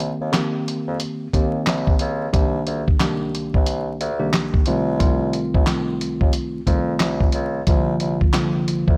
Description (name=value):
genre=hip hop, boom-bap hip-hop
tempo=90 BPM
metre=4/4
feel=swing 61% on 16ths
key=unclear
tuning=A4 = 435 Hz
part: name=mellow tine electric piano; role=accompaniment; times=0.0-9.0 s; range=C2 to G4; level=-25 LUFS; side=equal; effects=high-pass filter, low-pass filter
part: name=warm bassoon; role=bass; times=0.0-9.0 s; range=C2 to F2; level=-28 LUFS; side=equal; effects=none
part: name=dusty soul sampler-style drum kit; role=drums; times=0.0-9.0 s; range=handclaps, hi-hat, kick drum, snare drum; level=-22 LUFS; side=equal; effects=vintage 12-bit sampler grit
room=light reverb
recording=vinyl crackle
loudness=-21 LUFS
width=mono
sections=0.0-9.0 A section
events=break 0.0-1.0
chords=0.0 Cm7; 2.3 Ebmaj7/C; 4.7 F7/C; 7.7 Bb/C